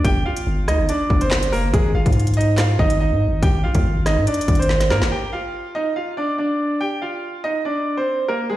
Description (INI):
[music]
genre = hip hop, drill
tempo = 142 BPM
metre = 4/4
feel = half-time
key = G phrygian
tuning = A4 = 440 Hz
[part]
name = bright concert grand piano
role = melody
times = 0.0-8.6 s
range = Ab3 to G5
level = -21 LUFS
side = right 1 dB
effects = digital delay
[part]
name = long sustained 808-style bass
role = bass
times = 0.0-5.1 s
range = F1 to Ab2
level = -19 LUFS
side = equal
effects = none
[part]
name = drill drum kit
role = drums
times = 0.0-5.1 s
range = handclaps, hi-hat, kick drum, rim click, snare drum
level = -20 LUFS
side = equal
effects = none
[sound]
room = digital ambience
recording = played on a big sound system in a bare room, large studio reverb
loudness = -17 LUFS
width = side -14 dB against mid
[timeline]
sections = 0.0-5.1 A section; 5.1-8.6 B section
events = drum fill 4.7-5.1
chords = 0.0 G7(no3); 1.7 Ab5; 5.1 G7(no3) (rootless)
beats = | 0.04 0.47 0.89 1.31 | 1.74 2.16 2.58 3.00 | 3.42 3.85 4.27 4.69 | 5.12 5.54 5.96 6.38 | 6.81 7.23 7.65 8.07 | 8.50